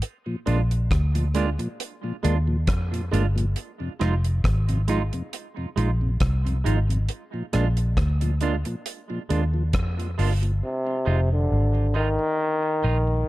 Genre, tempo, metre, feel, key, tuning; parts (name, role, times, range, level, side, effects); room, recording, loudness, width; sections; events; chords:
dub reggae; 68 BPM; 4/4; swing 55% on 16ths; F dorian; A4 = 440 Hz
deep reggae drum kit; drums; 0.0-10.6 s; hi-hat, kick drum, rim click; -27 LUFS; equal
mellow tonewheel organ; accompaniment; 0.3-13.2 s; F2 to Eb4; -31 LUFS; left 1 dB; slow rotary speaker, high-pass filter
semi-hollow electric guitar; accompaniment; 0.5-13.0 s; Ab3 to F4; -32 LUFS; right 7 dB; high-pass filter, tape echo
vintage muted fingered electric bass; bass; 0.5-13.3 s; F1 to F2; -22 LUFS; equal
clear trombone; melody; 10.6-13.3 s; C3 to Eb3; -24 LUFS; equal; tape echo
small room ambience; dark, warm production; -21 LUFS; side -17 dB against mid
0.0-13.3 A section
break 0.0-10.6; filter sweep 7.1-13.3; part muted 10.6-13.3
0.0 Bb7; 3.6 Fm7; 7.1 Bb7; 10.6 Fm7